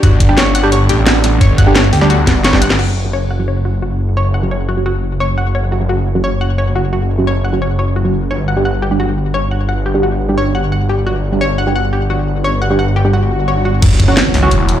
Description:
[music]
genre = dark technical drum and bass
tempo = 174 BPM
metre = 4/4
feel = straight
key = F# phrygian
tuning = A4 = 441 Hz
[part]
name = dark analog pad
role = sustained chords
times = 0.0-14.8 s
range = A3 to D5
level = -24 LUFS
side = equal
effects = wide subtle chorus, sidechain pumping
[part]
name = analog pluck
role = arpeggios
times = 0.0-13.7 s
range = F#4 to F#5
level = -20 LUFS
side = left 2 dB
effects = chorus, cassette tape, sidechain pumping, ping-pong delay
[part]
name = snarling distorted saw bass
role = bass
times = 0.0-14.8 s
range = E1 to D2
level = -15 LUFS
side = equal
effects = tube saturation, sidechain pumping
[part]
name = drum and bass drum kit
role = drums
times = 0.0-2.9, 13.8-14.8 s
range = crash cymbal, hi-hat, snare drum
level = -15 LUFS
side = equal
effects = none
[part]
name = electronic kick drum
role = drums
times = 0.0-2.6, 13.8-14.1 s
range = none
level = -11 LUFS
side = equal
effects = none
[part]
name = filtered dub chord stab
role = stabs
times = 0.3-14.5 s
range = F#3 to G4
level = -19 LUFS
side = right 2 dB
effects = chorus, ping-pong delay
[part]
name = swell and impact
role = sound effects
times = 13.2-14.8 s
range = none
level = -17 LUFS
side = equal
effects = none
[sound]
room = light reverb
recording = played on a big sound system in a bare room, large studio reverb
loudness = -11 LUFS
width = side -11 dB against mid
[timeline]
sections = 0.0-2.8 A section; 2.8-13.8 B section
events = drop 0.0-2.8; drum fill 2.3-2.8; band accent 2.7; swell 13.2-13.8; impact 13.8-14.8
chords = 0.0 G; 2.8 F#m7; 8.3 G; 13.8 F#m7

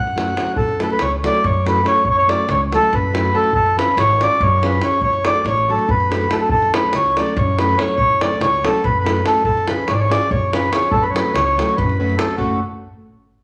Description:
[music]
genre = balkan folk, Balkan wedding band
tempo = 285 BPM (eighths)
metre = 7/8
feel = straight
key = F# harmonic minor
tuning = A4 = 439 Hz
[part]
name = mellow accordion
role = melody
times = 0.0-12.6 s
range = F#4 to F#5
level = -19 LUFS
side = equal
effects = none
[part]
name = upright bass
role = bass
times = 0.0-12.6 s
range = F#1 to F#2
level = -26 LUFS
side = equal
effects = none
[part]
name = davul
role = percussion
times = 0.1-12.6 s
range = none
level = -26 LUFS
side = equal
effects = none
[part]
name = nylon-string guitar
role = accompaniment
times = 0.2-12.6 s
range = E#3 to A4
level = -27 LUFS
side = equal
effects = none
[sound]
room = wet large studio reverb, RT60 1.1 s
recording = faint mains hum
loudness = -17 LUFS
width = mono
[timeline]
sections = 0.6-12.4 A section; 12.4-13.4 B section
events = none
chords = 0.0 F#m; 3.5 C#; 5.0 D; 6.5 F#m; 9.4 C#; 10.9 F#m

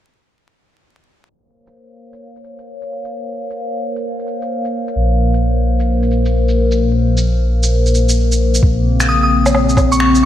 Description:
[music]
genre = future garage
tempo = 131 BPM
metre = 4/4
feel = swing 63% on 16ths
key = Bb minor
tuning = A4 = 440 Hz
[part]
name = warbly tape-like pad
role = sustained chords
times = 1.3-10.3 s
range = Db3 to F5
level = -18 LUFS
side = left 2 dB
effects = chorus, built-in reverb, sidechain pumping
[part]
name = electronic shaker, finger snaps and woodblock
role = drums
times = 1.7-10.2 s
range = none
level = -20 LUFS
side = right 1 dB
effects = studio reverb
[part]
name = dark detuned saw bass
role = bass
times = 5.0-10.3 s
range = Bb1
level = -14 LUFS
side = equal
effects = none
[part]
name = electronic kick drum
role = drums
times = 8.6-9.9 s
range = none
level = -14 LUFS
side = equal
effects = studio reverb
[part]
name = glassy synth bell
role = melody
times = 9.1-10.1 s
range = Db6 to Eb6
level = -17 LUFS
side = left 1 dB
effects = chorus, diffuse ambient delay
[sound]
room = moderate lush hall reverb, RT60 2.0 s, digital ambience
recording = dreamy mix soaked in reverb, vinyl crackle, low-pass filter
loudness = -13 LUFS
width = side -11 dB against mid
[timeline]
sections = 1.3-8.6 A section; 8.6-10.3 B section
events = filter sweep on ambient pad 1.3-8.6; filter sweep 1.3-8.6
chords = 1.3 Bbmadd9

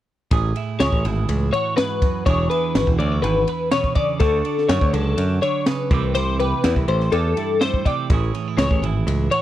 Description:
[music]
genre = math rock and midwest emo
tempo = 123 BPM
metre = 4/4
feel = straight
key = A major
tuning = A4 = 440 Hz
[part]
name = twelve-string electric guitar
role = accompaniment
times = 0.3-9.4 s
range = E2 to B4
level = -25 LUFS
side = right 7 dB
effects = none
[part]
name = modern bright picked electric bass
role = bass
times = 0.3-9.3 s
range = E1 to F#2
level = -21 LUFS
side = equal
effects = none
[part]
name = compact cocktail drum kit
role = drums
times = 0.3-9.4 s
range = kick drum, ride cymbal, snare drum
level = -21 LUFS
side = equal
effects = none
[part]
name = twelve-string electric guitar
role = arpeggios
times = 0.8-9.4 s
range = A4 to D5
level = -22 LUFS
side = left 4 dB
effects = analog chorus
[sound]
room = little or no reverb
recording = dry, close 1970s-style studio recording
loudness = -18 LUFS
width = side -13 dB against mid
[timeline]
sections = 0.3-9.4 A section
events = none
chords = 0.3 Amaj7; 2.3 E7; 4.2 Dmaj7; 5.9 C6; 8.1 Amaj7

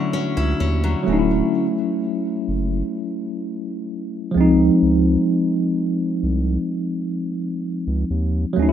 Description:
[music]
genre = contemporary R&B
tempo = 64 BPM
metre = 4/4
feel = straight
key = unclear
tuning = A4 = 440 Hz
[part]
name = tine electric piano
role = accompaniment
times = 0.0-8.7 s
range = E#3 to F#4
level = -19 LUFS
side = equal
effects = medium stereo tremolo
[part]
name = picked steel-string acoustic guitar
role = arpeggios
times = 0.0-1.7 s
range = D3 to E4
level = -24 LUFS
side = left 3 dB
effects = ping-pong delay
[part]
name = saturated sub bass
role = bass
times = 0.4-8.7 s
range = D1 to Eb2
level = -21 LUFS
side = equal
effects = none
[sound]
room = wet small room ambience, RT60 0.5 s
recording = rough home demo mix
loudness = -18 LUFS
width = side -9 dB against mid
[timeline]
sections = 0.0-1.1 A section; 1.1-8.7 B section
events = none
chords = 0.0 Dmaj9; 4.4 C#maj9

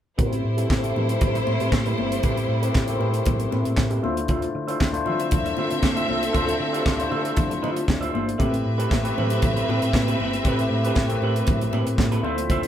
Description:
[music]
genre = disco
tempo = 117 BPM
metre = 4/4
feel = straight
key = unclear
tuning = A4 = 443 Hz
[part]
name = clear studio string section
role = second line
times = 0.2-12.2 s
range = G3 to E5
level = -28 LUFS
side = right 1 dB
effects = none
[part]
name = electric guitar through a small old amp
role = accompaniment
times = 0.2-12.7 s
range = C4 to E5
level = -30 LUFS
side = right 2 dB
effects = low-pass filter
[part]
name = overdriven tine electric piano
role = accompaniment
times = 0.2-12.7 s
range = A3 to E5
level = -27 LUFS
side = left 3 dB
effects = low-pass filter
[part]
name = hollow-body short-scale fingered electric bass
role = bass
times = 0.2-12.6 s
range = G1 to D3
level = -27 LUFS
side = equal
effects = none
[part]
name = tight funk drum kit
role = drums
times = 0.2-12.7 s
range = handclaps, hi-hat, kick drum, snare drum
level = -24 LUFS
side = right 1 dB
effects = none
[part]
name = congas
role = percussion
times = 0.2-12.6 s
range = none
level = -31 LUFS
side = left 2 dB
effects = none
[part]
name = percussive tonewheel organ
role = sustained chords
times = 8.4-12.7 s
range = D3 to E5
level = -31 LUFS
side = right 1 dB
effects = slow rotary speaker, low-pass filter
[sound]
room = moderate studio reverb, RT60 0.5 s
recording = band playing live in one room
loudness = -20 LUFS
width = side -10 dB against mid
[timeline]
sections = 0.2-12.7 A section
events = filter sweep 0.2-12.7; tine electric piano fill 7.4-8.4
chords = 0.2 Am9; 4.0 Dm9; 8.4 Am9

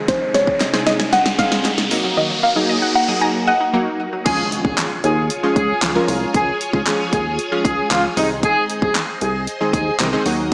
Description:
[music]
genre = dance-pop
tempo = 115 BPM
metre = 4/4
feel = straight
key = Db major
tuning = A4 = 443 Hz
[part]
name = funky polysynth comp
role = accompaniment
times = 0.0-10.5 s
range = C3 to Bb4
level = -22 LUFS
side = equal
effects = chorus, sidechain pumping, slapback echo
[part]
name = phased string machine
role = sustained chords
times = 0.0-10.5 s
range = C3 to C6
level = -26 LUFS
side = equal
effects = ensemble chorus, phaser, sidechain pumping
[part]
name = wide unison pluck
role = arpeggios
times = 0.0-4.2 s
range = C3 to Eb6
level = -25 LUFS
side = equal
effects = sidechain pumping, digital delay
[part]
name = riser and impact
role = sound effects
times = 0.0-6.3 s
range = none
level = -24 LUFS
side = equal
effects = none
[part]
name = soft round pluck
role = melody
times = 0.1-4.0 s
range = C5 to Ab5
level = -19 LUFS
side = equal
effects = chorus, digital delay
[part]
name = pop drum kit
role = drums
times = 0.1-10.4 s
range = crash cymbal, handclaps, hi-hat, kick drum, snare drum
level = -20 LUFS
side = equal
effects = none
[part]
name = group handclap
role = percussion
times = 0.6-10.1 s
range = none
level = -31 LUFS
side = equal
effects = none
[part]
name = mellow horn section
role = melody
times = 4.3-9.9 s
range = Eb4 to Ab4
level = -21 LUFS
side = equal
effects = sidechain pumping, slapback echo, digital delay
[part]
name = chorused synth bass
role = bass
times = 4.3-10.5 s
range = C2 to Eb2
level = -22 LUFS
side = equal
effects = sidechain pumping
[sound]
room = moderate recital hall reverb, RT60 1.5 s, digital ambience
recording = big arena sound, small speaker sound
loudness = -15 LUFS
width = side -31 dB against mid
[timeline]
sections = 0.0-4.3 A section; 4.3-10.5 B section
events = build-up 0.0-4.3; drum fill 0.0-2.2; riser 0.0-4.3; drop 4.3-10.5; impact 4.3-6.3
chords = 0.0 Ab/C; 1.9 Ebm; 4.3 Db; 8.2 Ab/C

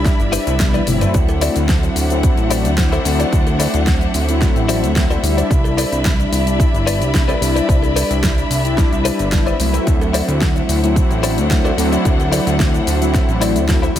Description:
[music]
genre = nu-disco, nu disco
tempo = 110 BPM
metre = 4/4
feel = straight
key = D mixolydian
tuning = A4 = 441 Hz
[part]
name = mellow synth brass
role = accompaniment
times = 0.0-14.0 s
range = F#3 to E4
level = -20 LUFS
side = left 1 dB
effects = chorus, sidechain pumping, tape echo
[part]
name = rich studio string section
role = sustained chords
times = 0.0-14.0 s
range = D4 to B5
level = -24 LUFS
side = left 1 dB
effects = vintage 12-bit sampler grit, sidechain pumping
[part]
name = fat analog bass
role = bass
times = 0.0-14.0 s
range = G1 to D2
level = -19 LUFS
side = equal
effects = none
[part]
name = electronic kick drum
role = drums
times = 0.1-13.8 s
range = none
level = -16 LUFS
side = equal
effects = small room ambience
[part]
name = pop drum kit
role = drums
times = 0.1-14.0 s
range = hi-hat, shaker, snare drum, toms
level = -23 LUFS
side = left 1 dB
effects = small room ambience
[part]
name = direct-recorded clean electric guitar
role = riff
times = 0.3-14.0 s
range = E4 to E5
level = -23 LUFS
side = left 4 dB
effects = ensemble chorus, tape echo
[part]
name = cowbell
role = percussion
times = 1.3-12.4 s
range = none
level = -30 LUFS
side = right 5 dB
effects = none
[sound]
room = little or no reverb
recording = none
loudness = -13 LUFS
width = side -11 dB against mid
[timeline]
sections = 0.0-14.0 A section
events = drum fill 0.7-1.1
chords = 0.0 Cmaj9; 1.1 D9; 5.5 Cmaj9; 9.9 D9

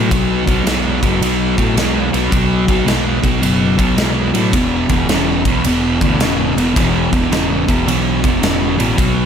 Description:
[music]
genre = blues rock power trio and southern rock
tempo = 108 BPM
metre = 4/4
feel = swing 66% on 8ths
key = unclear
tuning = A4 = 443 Hz
[part]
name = sludgy distorted guitar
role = riff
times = 0.0-9.3 s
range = E2 to G#3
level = -15 LUFS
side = equal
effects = overdrive
[part]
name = fuzz fingered electric bass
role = bass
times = 0.0-9.3 s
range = E1 to A2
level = -20 LUFS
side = equal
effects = overdrive
[part]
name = big rock drum kit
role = drums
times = 0.1-9.2 s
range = kick drum, ride cymbal, snare drum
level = -18 LUFS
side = equal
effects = none
[sound]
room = moderate large studio reverb, RT60 0.9 s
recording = none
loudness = -13 LUFS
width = side -7 dB against mid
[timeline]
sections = 0.0-9.3 A section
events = none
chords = 0.0 B5; 4.5 E5

